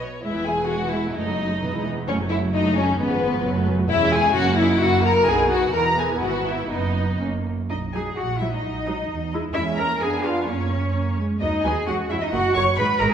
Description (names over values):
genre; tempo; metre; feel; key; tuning
quick classical-period movement for string orchestra; 130 BPM; 2/4; rubato; E major, B major from 3.9 s; A4 = 441 Hz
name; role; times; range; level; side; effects
muted chamber violin section; second line; 0.0-13.1 s; Cb4 to C#6; -24 LUFS; left 2 dB; none
muted chamber cello section; bass; 0.0-13.1 s; E2 to C#5; -26 LUFS; right 2 dB; none
muted chamber double bass section; bass; 0.0-13.1 s; E1 to F#2; -27 LUFS; right 3 dB; none
muted chamber violin section; melody; 0.2-13.1 s; Cb5 to C#6; -28 LUFS; left 4 dB; none
muted chamber viola section; accompaniment; 0.2-13.1 s; E3 to F#4; -28 LUFS; right 2 dB; none
room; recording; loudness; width
wet recital hall reverb, RT60 1.4 s; recorded in a church or concert hall; -19 LUFS; side -8 dB against mid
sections
0.2-7.7 A section; 7.7-13.1 B section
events
none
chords
0.2 E; 1.2 D#dim/F#; 1.6 E; 2.1 F#m; 3.0 Fdim/Ab; 3.4 F#m; 3.9 C#m/E; 4.4 F#; 4.8 F#7; 5.3 B; 5.7 E; 6.7 B/F#; 7.2 F#; 7.7 B; 8.2 F#7/A#; 8.6 B; 9.1 E; 9.6 C#m/E; 10.0 Fdim7; 10.5 F#; 11.4 B/D#; 11.9 C#m; 12.3 F#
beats
| 0.24 0.70 | 1.16 1.62 | 2.08 2.53 | 2.99 3.44 | 3.90 4.36 | 4.82 5.28 | 5.74 6.22 | 6.72 7.21 | 7.70 8.17 | 8.63 9.10 | 9.55 10.01 | 10.47 10.94 | 11.41 11.87 | 12.33 12.78